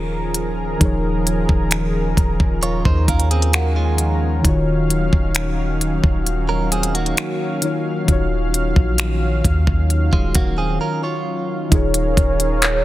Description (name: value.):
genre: contemporary R&B.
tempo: 66 BPM.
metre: 4/4.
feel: straight.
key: Eb minor.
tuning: A4 = 440 Hz.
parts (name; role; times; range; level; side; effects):
muted felt-like synth keys; accompaniment; 0.0-12.8 s; Eb3 to Bb5; -24 LUFS; left 2 dB; chorus.
lush unison pad; sustained chords; 0.0-12.8 s; Eb3 to F5; -25 LUFS; equal; chorus.
soft 808-style bass; bass; 0.0-12.8 s; Eb1 to Eb2; -20 LUFS; equal; none.
trap drum kit; drums; 0.3-12.8 s; finger snaps, handclaps, hi-hat, kick drum; -18 LUFS; equal; soft clipping on snare.
direct-recorded clean electric guitar; arpeggios; 2.6-11.7 s; Ab3 to Db5; -25 LUFS; right 4 dB; digital delay.
soft octave-layered synth lead; melody; 11.7-12.8 s; Db5; -21 LUFS; right 1 dB; chorus, phaser.
room: little or no reverb.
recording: dense, heavily limited modern master.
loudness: -16 LUFS.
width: side -15 dB against mid.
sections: 0.0-11.7 A section; 11.7-12.8 B section.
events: synth keys fill 2.6-4.4; break 10.8-11.7.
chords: 0.0 Ebm11; 11.7 Eb9sus4.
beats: | 0.81 1.72 2.63 3.54 | 4.45 5.36 6.26 7.17 | 8.08 8.99 9.90 10.81 | 11.72 12.63.